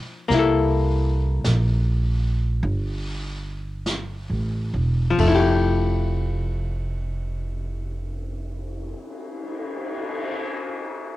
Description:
jazz ballad; 44-54 BPM; 4/4; swing 68% on 8ths; F major; A4 = 440 Hz
archtop guitar, miked and amplified; accompaniment; 0.0-9.1 s; F3 to A4; -21 LUFS; left 4 dB
upright bass; bass; 0.3-8.9 s; E1 to C2; -23 LUFS; right 1 dB; tube saturation
jazz brush drum kit; drums; 0.3-10.3 s; brushed snare drum, cymbal swell, hi-hat, kick drum, ride cymbal, snare drum; -32 LUFS; left 1 dB; cassette tape
light reverb; home recording on cassette; -21 LUFS; side -16 dB against mid
0.0-5.2 A section; 5.2-10.6 B section
slowing down 0.0-5.2
0.3 C6; 5.2 Fmaj9
| 0.30 1.44 2.63 3.87 | 5.19 6.54 7.89 9.24

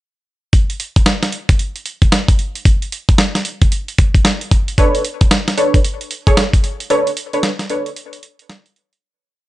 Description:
R&B, new jack swing; 113 BPM; 4/4; swing 62% on 16ths; B dorian; A4 = 442 Hz
dusty soul sampler-style drum kit; drums; 0.5-9.0 s; hi-hat, kick drum, snare drum; -13 LUFS; equal
funky polysynth comp; stabs; 4.8-7.9 s; D4 to C#5; -18 LUFS; right 1 dB; chorus
little or no reverb; nothing above 10.7 kHz; -13 LUFS; side -16 dB against mid
0.5-9.0 breakdown
break 6.9-9.0; fade-out 6.9-9.0
0.5 N.C.; 4.8 Bm9; 5.8 Amaj7; 6.9 Bm9; 8.0 N.C.
| 0.53 1.06 1.59 2.12 | 2.65 3.19 3.72 4.25 | 4.78 5.31 5.84 6.37 | 6.90 7.43 7.96 8.50

